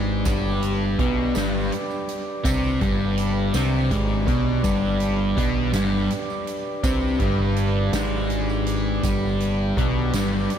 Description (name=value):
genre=psychedelic rock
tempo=55 BPM (dotted quarters)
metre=6/8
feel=straight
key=G major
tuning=A4 = 440 Hz
part: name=mellow tonewheel organ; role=sustained chords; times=0.0-10.6 s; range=D4 to D5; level=-30 LUFS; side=right 3 dB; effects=slow rotary speaker
part: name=fuzz guitar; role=riff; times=0.0-10.5 s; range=G2 to C4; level=-23 LUFS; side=equal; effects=distortion, phaser
part: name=growling picked electric bass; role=bass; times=0.0-10.5 s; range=G1 to C2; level=-26 LUFS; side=equal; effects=overdrive
part: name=soft-mallet drum kit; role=drums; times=0.3-10.6 s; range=hi-hat, kick drum, snare drum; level=-28 LUFS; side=equal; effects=none
part: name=tambourine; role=percussion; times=0.3-10.3 s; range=none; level=-44 LUFS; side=right 8 dB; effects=none
room=light reverb, small room reverb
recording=none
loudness=-20 LUFS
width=side -9 dB against mid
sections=0.0-10.6 A section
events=none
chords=0.0 G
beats=| 0.26 1.35 | 2.45 3.54 | 4.64 5.74 | 6.83 7.93 | 9.03 10.12